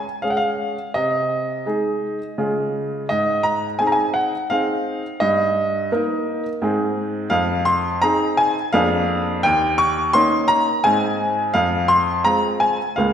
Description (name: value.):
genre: classical-period piano sonatina.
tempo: 85 BPM.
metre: 3/4.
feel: straight.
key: unclear.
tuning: A4 = 444 Hz.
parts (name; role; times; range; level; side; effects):
clear baby grand piano; solo; 0.0-13.1 s; Db2 to Db6; -17 LUFS; equal; none.
room: wet scoring stage reverb, RT60 1.6 s.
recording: none.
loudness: -17 LUFS.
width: side -8 dB against mid.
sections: 0.0-13.1 A section.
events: none.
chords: 0.0 Db5; 0.9 Ab/C; 2.4 Db; 3.1 Ab; 5.2 Eb/G; 6.6 Ab; 7.3 Fm7; 8.7 Bb7/F; 9.4 Eb5; 10.8 Ab; 11.5 Fm.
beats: 0.23 | 0.95 1.66 2.38 | 3.10 3.80 4.51 | 5.22 5.92 6.62 | 7.32 8.03 8.74 | 9.45 10.14 10.84 | 11.55 12.26 12.97.